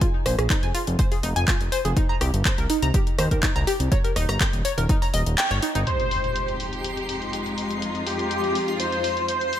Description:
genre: progressive house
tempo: 123 BPM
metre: 4/4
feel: straight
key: F minor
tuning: A4 = 440 Hz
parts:
  - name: analog pluck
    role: arpeggios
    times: 0.0-5.8 s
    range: Eb4 to Bb5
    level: -26 LUFS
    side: equal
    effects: chorus, sidechain pumping, ping-pong delay
  - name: electronic kick drum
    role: drums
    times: 0.0-5.0 s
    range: none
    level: -23 LUFS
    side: equal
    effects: none
  - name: house drum kit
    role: drums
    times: 0.0-9.6 s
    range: handclaps, hi-hat, rim click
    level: -28 LUFS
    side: left 1 dB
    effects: low-pass filter on hats, low-pass filter on snare
  - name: fat analog bass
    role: bass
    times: 0.3-5.8 s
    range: Eb1 to Eb2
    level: -24 LUFS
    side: equal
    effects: sidechain pumping
  - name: wide unison lead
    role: melody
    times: 5.9-9.6 s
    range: G4 to C5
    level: -25 LUFS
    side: left 1 dB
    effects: wide subtle chorus, sidechain pumping, ping-pong delay
  - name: clear symphonic string section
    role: sustained chords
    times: 5.9-9.6 s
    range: F2 to G4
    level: -28 LUFS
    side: left 1 dB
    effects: sidechain pumping
  - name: impact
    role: sound effects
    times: 5.9-7.8 s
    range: none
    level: -32 LUFS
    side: equal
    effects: none
  - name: twinkling granular texture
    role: texture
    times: 6.3-9.6 s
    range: C6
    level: -34 LUFS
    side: left 2 dB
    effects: built-in reverb, sidechain pumping
room: light reverb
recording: none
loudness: -21 LUFS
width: side -11 dB against mid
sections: 0.0-5.9 A section; 5.9-9.6 B section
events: kick drops out 5.4-5.9; band accent 5.4; impact 5.9-7.8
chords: 0.0 Fm; 2.0 Cm7; 3.9 Eb; 5.9 Fm7

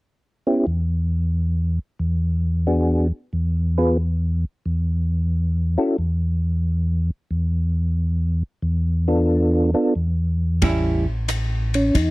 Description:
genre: soul jazz organ trio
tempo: 90 BPM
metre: 4/4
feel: swing 68% on 8ths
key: A mixolydian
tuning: A4 = 444 Hz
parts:
  - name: percussive tonewheel organ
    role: melody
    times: 0.5-12.1 s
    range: B3 to B4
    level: -18 LUFS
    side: equal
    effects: slow rotary speaker, chorus vibrato
  - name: mellow tonewheel organ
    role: bass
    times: 0.7-12.1 s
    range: A1 to E2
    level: -20 LUFS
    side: equal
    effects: chorus vibrato, slow rotary speaker
  - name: vintage hollow-body jazz guitar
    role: accompaniment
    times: 10.6-11.0 s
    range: G3 to E4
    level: -22 LUFS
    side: right 3 dB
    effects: none
  - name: swinging big-band drum kit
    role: drums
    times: 10.6-12.1 s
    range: hi-hat, kick drum, ride cymbal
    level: -25 LUFS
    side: equal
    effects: none
room: little or no reverb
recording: dry, close 1970s-style studio recording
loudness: -19 LUFS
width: side -21 dB against mid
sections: 0.0-10.6 A section; 10.6-12.1 B section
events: none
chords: 0.0 N.C.; 10.6 A7

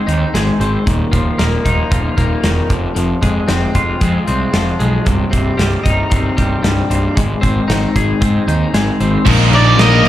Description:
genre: quiet-loud alternative rock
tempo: 114 BPM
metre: 4/4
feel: straight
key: unclear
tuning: A4 = 440 Hz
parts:
  - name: twelve-string electric guitar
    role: arpeggios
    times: 0.0-9.3 s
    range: C2 to Ab4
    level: -18 LUFS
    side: left 2 dB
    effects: wide subtle chorus, slapback echo, digital delay
  - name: fuzz picked electric bass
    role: bass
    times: 0.1-10.1 s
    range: C1 to Ab2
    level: -16 LUFS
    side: equal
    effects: overdrive
  - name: big rock drum kit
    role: drums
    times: 0.1-10.1 s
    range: crash cymbal, hi-hat, kick drum, snare drum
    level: -19 LUFS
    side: equal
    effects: none
  - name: scooped high-gain guitar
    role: riff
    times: 9.3-10.1 s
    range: Bb2 to Bb4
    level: -15 LUFS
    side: right 11 dB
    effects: distortion, slapback echo
  - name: thick fuzz guitar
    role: riff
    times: 9.3-10.1 s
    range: Bb2 to Bb4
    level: -15 LUFS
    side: left 10 dB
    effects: distortion, slapback echo
  - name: octave-fuzz lead guitar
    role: melody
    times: 9.5-10.1 s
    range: D5 to Eb5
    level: -13 LUFS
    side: right 1 dB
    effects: distortion, digital delay
room: small room ambience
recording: live gig heard through the venue's PA, club reverb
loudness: -12 LUFS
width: side -13 dB against mid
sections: 0.0-9.3 A section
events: none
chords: 0.0 Ab; 0.9 Ebsus2; 2.7 Fm; 5.1 Cm; 7.2 Ab; 9.3 Bbsus4

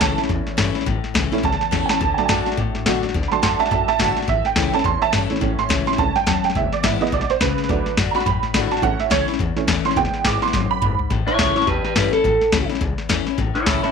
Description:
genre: rockabilly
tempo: 211 BPM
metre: 4/4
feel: swing 60% on 8ths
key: A mixolydian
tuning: A4 = 440 Hz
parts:
  - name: honky-tonk upright piano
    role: accompaniment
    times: 0.0-11.1 s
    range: E3 to D6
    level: -21 LUFS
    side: right 12 dB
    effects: none
  - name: picked steel-string acoustic guitar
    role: accompaniment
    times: 0.0-13.9 s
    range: E2 to F#4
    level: -24 LUFS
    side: left 17 dB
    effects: none
  - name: upright bass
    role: bass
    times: 0.0-13.9 s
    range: E1 to B2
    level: -25 LUFS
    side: left 1 dB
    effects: none
  - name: booming analog drum machine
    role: drums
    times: 0.0-13.9 s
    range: hi-hat, kick drum, snare drum, toms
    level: -23 LUFS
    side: left 1 dB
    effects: none
  - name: electric guitar through a small old amp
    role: melody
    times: 11.3-13.9 s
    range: E4 to C#5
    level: -18 LUFS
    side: equal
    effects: phaser, tape echo
room: studio ambience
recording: 1960s-style stereo with parts hard left and right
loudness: -17 LUFS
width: side -6 dB against mid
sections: 0.0-11.1 A section; 11.1-13.9 B section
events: honky-tonk piano solo 0.0-11.1; drum fill 1.7, 10.5-11.1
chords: 0.0 A; 2.0 D; 4.3 A; 6.6 E; 7.7 D; 8.8 A; 10.0 E; 11.1 A

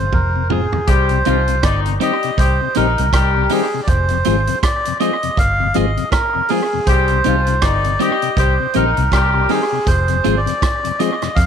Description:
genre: roots reggae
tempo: 80 BPM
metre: 4/4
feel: swing 60% on 16ths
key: C minor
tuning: A4 = 440 Hz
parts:
  - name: melodica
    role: melody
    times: 0.0-11.5 s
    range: Ab4 to F5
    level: -19 LUFS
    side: right 1 dB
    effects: dub echo
  - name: mellow tonewheel organ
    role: accompaniment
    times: 0.0-11.3 s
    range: F2 to C4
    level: -23 LUFS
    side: left 12 dB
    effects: slow rotary speaker
  - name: vintage muted fingered electric bass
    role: bass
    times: 0.0-11.5 s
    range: F1 to F2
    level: -18 LUFS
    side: equal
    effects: tube saturation
  - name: vintage drum kit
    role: drums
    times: 0.1-11.5 s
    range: hi-hat, kick drum, rim click, toms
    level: -20 LUFS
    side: right 2 dB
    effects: tape echo
  - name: clean electric guitar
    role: accompaniment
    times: 0.5-11.2 s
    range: C4 to Ab4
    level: -25 LUFS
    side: right 13 dB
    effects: dub echo
  - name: bright horn section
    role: second line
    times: 0.9-9.7 s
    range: Eb3 to G4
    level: -22 LUFS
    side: left 11 dB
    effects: dub echo
room: moderate spring reverb, RT60 2.7 s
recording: 1960s-style stereo with parts hard left and right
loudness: -14 LUFS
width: side -8 dB against mid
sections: 0.9-11.5 A section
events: drum fill 0.1-0.9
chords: 0.0 Fm; 0.9 Cm; 3.9 Fm; 6.9 Cm; 9.9 Fm

